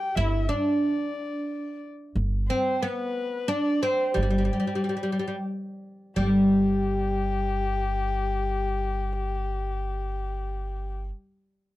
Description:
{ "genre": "Persian modal ensemble", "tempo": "90 BPM", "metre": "3/4", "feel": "straight", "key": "G dastgah mahur", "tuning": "A4 = 437 Hz", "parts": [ { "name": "oud", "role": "melody", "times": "0.0-11.1 s", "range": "G3 to G4", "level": "-26 LUFS", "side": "equal", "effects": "none" }, { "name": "dark kamancheh", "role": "second line", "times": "0.0-10.9 s", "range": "G4 to G5", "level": "-32 LUFS", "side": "left 6 dB", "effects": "none" }, { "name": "upright bass", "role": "bass", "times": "0.2-11.1 s", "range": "G1", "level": "-28 LUFS", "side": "right 1 dB", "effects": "none" } ], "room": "little or no reverb", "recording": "dry, close 1970s-style studio recording", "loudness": "-24 LUFS", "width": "side -16 dB against mid", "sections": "0.0-6.2 A section; 6.2-10.2 B section", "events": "none", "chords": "none", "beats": "| 0.17 0.83 1.50 | 2.17 2.83 3.50 | 4.17 4.83 5.50 | 6.17 6.83 7.50 | 8.16 8.83 9.50" }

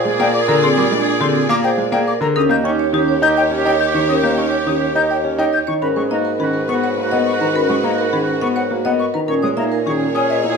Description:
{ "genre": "classical, minimalist pattern music", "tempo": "104 BPM", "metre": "3/4", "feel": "straight", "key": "G# minor", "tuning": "A4 = 440 Hz", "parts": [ { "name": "marimba with medium hard mallets", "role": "melody", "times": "0.0-10.5 s", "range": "G4 to A#5", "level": "-22 LUFS", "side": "left 8 dB", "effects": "none" }, { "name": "warm symphonic string section", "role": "sustained chords", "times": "0.0-10.6 s", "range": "F#4 to D5", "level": "-25 LUFS", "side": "left 3 dB", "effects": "none" }, { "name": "vibraphone with soft mallets", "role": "arpeggios", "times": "0.0-10.6 s", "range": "B#3 to D#5", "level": "-21 LUFS", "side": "right 7 dB", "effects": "none" }, { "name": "mellow bassoon", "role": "bass", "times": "0.0-10.6 s", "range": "D#2 to A#2", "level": "-24 LUFS", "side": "right 1 dB", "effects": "none" }, { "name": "warm oboe", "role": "second line", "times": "0.1-10.6 s", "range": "F#4 to G#4", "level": "-25 LUFS", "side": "right 5 dB", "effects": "none" }, { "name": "warm grand piano", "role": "accompaniment", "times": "0.1-10.6 s", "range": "D3 to D#4", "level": "-21 LUFS", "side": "equal", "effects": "none" }, { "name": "mellow concert flute", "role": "arpeggios", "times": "0.2-10.4 s", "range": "E5 to G6", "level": "-22 LUFS", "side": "left 4 dB", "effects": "none" } ], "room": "moderate large studio reverb, RT60 0.9 s", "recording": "none", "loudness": "-14 LUFS", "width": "side -5 dB against mid", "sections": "0.0-10.6 A section", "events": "none", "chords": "0.0 A#13; 2.4 D#7; 5.8 G#m9; 9.3 A#m7b5", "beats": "0.05 | 0.63 1.21 1.78 | 2.36 2.94 3.52 | 4.09 4.67 5.25 | 5.82 6.40 6.98 | 7.55 8.13 8.71 | 9.29 9.86 10.44" }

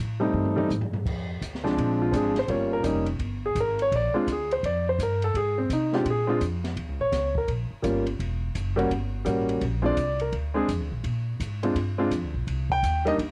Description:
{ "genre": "jazz piano trio", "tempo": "168 BPM", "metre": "4/4", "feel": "swing 64% on 8ths", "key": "Bb mixolydian", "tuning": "A4 = 440 Hz", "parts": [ { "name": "upright bass", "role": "bass", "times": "0.0-13.3 s", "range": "E1 to C3", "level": "-32 LUFS", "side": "equal", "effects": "none" }, { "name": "warm concert grand piano", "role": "melody", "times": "0.2-13.2 s", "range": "F3 to G5", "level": "-27 LUFS", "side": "equal", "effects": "plate reverb" }, { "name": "open jazz drum kit", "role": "drums", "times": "0.3-13.3 s", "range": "crash cymbal, hi-hat, kick drum, ride cymbal, snare drum, toms", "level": "-38 LUFS", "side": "equal", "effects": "cassette tape" } ], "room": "light reverb", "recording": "home recording on cassette", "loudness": "-26 LUFS", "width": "mono", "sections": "0.0-1.1 A section; 1.1-13.3 B section", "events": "drum fill 0.3-1.1; grand piano solo 1.1-13.3", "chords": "0.0 F7 (rootless); 1.1 Bb7; 2.5 Eb7 (rootless); 3.9 Bb7; 5.3 Fm (rootless); 6.0 Bb7(no3); 6.8 Eb7 (rootless); 8.2 Edim7; 9.6 Bb7; 12.5 Cm", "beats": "0.34 0.69 | 1.05 1.41 1.77 2.12 | 2.48 2.84 3.20 3.55 | 3.91 4.27 4.62 4.98 | 5.34 5.69 6.05 6.41 | 6.76 7.12 7.48 7.83 | 8.19 8.54 8.90 9.26 | 9.61 9.97 10.33 10.68 | 11.04 11.39 11.75 12.11 | 12.46 12.82 13.17" }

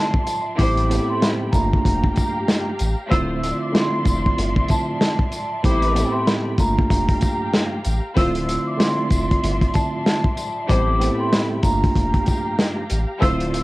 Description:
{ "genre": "hip hop, boom-bap hip-hop", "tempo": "95 BPM", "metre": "4/4", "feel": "swing 58% on 16ths", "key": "D minor", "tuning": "A4 = 439 Hz", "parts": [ { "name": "vibraphone with soft mallets", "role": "melody", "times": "0.0-13.6 s", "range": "A5 to E6", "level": "-25 LUFS", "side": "equal", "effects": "high-pass filter, low-pass filter, analog delay" }, { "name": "tine electric piano", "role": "accompaniment", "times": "0.0-13.6 s", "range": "G2 to G4", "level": "-24 LUFS", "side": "right 1 dB", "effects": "medium stereo tremolo, high-pass filter, low-pass filter" }, { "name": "muted studio string section", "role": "sustained chords", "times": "0.0-13.6 s", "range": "F3 to C6", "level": "-30 LUFS", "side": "left 1 dB", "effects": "high-pass filter, low-pass filter" }, { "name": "crunchy breakbeat drum kit", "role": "drums", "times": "0.1-13.6 s", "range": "hi-hat, kick drum, snare drum", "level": "-20 LUFS", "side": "equal", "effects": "cassette tape" }, { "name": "tambourine", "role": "percussion", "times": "0.3-13.6 s", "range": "none", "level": "-39 LUFS", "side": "left 2 dB", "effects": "none" }, { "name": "warm symphonic string section", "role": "stabs", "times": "0.6-13.5 s", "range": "G3 to C5", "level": "-28 LUFS", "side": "left 2 dB", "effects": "high-pass filter, low-pass filter, analog delay" }, { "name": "soft dub sub bass", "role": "bass", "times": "0.6-13.6 s", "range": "D1 to A1", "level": "-23 LUFS", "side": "equal", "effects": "none" } ], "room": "small room ambience", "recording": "home recording on cassette", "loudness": "-17 LUFS", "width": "side -20 dB against mid", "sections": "0.0-13.6 A section", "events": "none", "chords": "0.0 Dm9; 0.6 Am9; 1.5 Gm9; 3.1 Dm9; 5.6 Am9; 6.6 Gm9; 8.2 Dm9; 10.7 Am9; 11.6 Gm9", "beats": "| 0.59 1.22 1.85 2.48 | 3.12 3.75 4.38 5.01 | 5.64 6.27 6.91 7.54 | 8.17 8.80 9.43 10.06 | 10.70 11.33 11.96 12.59 | 13.22" }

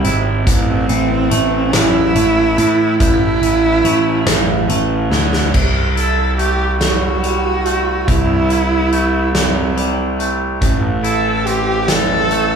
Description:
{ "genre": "post-rock", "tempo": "47 BPM (dotted quarters)", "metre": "6/8", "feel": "straight", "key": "unclear", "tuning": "A4 = 440 Hz", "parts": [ { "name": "warm cello", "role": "melody", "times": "0.0-12.6 s", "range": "C4 to A4", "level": "-17 LUFS", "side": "right 2 dB", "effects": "none" }, { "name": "twangy electric guitar", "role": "arpeggios", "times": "0.0-12.6 s", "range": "A2 to E4", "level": "-20 LUFS", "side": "left 1 dB", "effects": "none" }, { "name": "fuzz picked electric bass", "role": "bass", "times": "0.0-12.6 s", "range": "G#1 to A2", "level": "-18 LUFS", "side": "right 1 dB", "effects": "overdrive" }, { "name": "huge arena drum kit", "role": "drums", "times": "0.0-12.5 s", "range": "crash cymbal, hi-hat, kick drum, snare drum", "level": "-18 LUFS", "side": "equal", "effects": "none" } ], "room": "light reverb", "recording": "band playing live in one room, studio ambience", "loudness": "-13 LUFS", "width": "side -6 dB against mid", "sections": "0.0-5.5 A section; 5.5-12.6 B section", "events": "drum fill 5.1-5.5", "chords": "0.5 Am; 5.5 C6; 10.6 Am", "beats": "| 0.47 1.74 | 3.00 4.27 | 5.54 6.81 | 8.08 9.35 | 10.62 11.89" }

